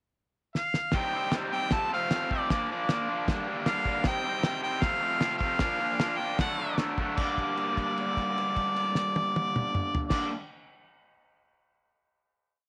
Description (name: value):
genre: garage rock duo or trio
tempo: 154 BPM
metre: 4/4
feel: straight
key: G minor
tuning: A4 = 439 Hz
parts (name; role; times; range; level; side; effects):
- clear harmonica; melody; 0.6-10.3 s; D5 to A5; -32 LUFS; equal; overdrive
- cloth-damped thuddy drum kit; drums; 0.6-10.2 s; crash cymbal, kick drum, snare drum, toms; -34 LUFS; equal; none
- raw garage guitar; riff; 0.9-10.3 s; F2 to Eb4; -34 LUFS; equal; overdrive
room: light reverb, small room ambience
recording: none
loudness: -29 LUFS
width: mono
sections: 0.0-1.0 pickup bar; 1.0-7.2 pre-chorus; 7.2-10.3 final chord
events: drum fill 0.6-1.0; held note 7.2-10.1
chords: 0.0 N.C.; 1.0 Cm; 1.7 F; 2.5 Bb; 3.3 Gm; 4.0 Cm; 4.8 F; 5.6 Bb; 6.4 D; 7.2 Gm